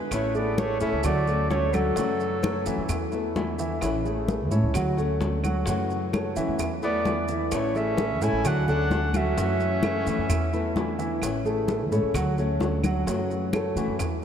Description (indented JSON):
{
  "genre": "latin, Cuban son and guajira",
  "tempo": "130 BPM",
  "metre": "4/4",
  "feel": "straight",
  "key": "A major",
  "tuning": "A4 = 439 Hz",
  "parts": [
    { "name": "flamenco guitar", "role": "accompaniment", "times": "0.0-14.0 s", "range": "C#3 to F#4", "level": "-32 LUFS", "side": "left 4 dB", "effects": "none" },
    { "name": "warm clarinet", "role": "melody", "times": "0.1-3.1, 6.8-11.0 s", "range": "A4 to G#5", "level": "-30 LUFS", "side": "right 2 dB", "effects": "none" },
    { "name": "clear trumpet", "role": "second line", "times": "0.1-3.1, 6.8-11.0 s", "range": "F#3 to E4", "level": "-36 LUFS", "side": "left 3 dB", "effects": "none" },
    { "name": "upright bass", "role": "bass", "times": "0.1-14.2 s", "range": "A1 to F#3", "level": "-29 LUFS", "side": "equal", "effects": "none" },
    { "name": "bongos", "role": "percussion", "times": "0.1-14.2 s", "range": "none", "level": "-36 LUFS", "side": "left 5 dB", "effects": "none" },
    { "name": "claves", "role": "percussion", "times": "0.1-14.2 s", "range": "none", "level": "-44 LUFS", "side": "right 4 dB", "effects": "none" },
    { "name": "congas", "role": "percussion", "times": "0.1-14.2 s", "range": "none", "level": "-33 LUFS", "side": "left 2 dB", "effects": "none" },
    { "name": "maracas", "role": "percussion", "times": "0.1-14.2 s", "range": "none", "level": "-42 LUFS", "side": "right 8 dB", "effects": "none" },
    { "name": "dark baby grand piano", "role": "arpeggios", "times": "0.3-14.1 s", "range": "E3 to F#5", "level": "-28 LUFS", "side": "right 1 dB", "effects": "none" }
  ],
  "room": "wet cathedral reverb, RT60 4.8 s",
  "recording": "in a vast, echoing space",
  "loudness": "-23 LUFS",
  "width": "side -8 dB against mid",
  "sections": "0.1-14.2 A section",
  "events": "none",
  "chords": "0.1 Amaj7; 1.0 Dmaj7; 2.0 F#m7; 2.9 E7sus4; 3.8 Amaj7; 4.7 Dmaj7; 5.7 F#m7; 6.6 E7sus4; 7.5 Amaj7; 8.4 Dmaj7; 9.4 F#m7; 10.3 E7sus4; 11.2 Amaj7; 12.1 Dmaj7; 13.1 F#m7",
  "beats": "| 0.12 0.58 1.04 1.50 | 1.97 2.43 2.89 3.36 | 3.82 4.28 4.75 5.21 | 5.67 6.13 6.60 7.06 | 7.52 7.99 8.45 8.91 | 9.37 9.84 10.30 10.76 | 11.22 11.68 12.15 12.61 | 13.07 13.53 13.99"
}